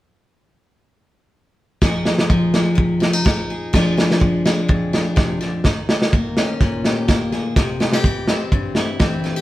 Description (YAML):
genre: highlife guitar band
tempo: 125 BPM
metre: 4/4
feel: straight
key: F minor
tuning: A4 = 439 Hz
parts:
  - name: picked steel-string acoustic guitar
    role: accompaniment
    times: 1.8-9.4 s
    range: F2 to Ab4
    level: -20 LUFS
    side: left 1 dB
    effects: none
  - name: crunchy breakbeat drum kit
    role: drums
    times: 1.8-9.3 s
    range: kick drum, snare drum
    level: -18 LUFS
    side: equal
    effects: none
room: moderate stone room reverb, RT60 1.0 s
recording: band playing live in one room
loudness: -16 LUFS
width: side -16 dB against mid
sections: 1.8-9.4 A section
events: none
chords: 1.8 Fm7; 3.7 Fm6; 5.6 Eb7; 7.6 C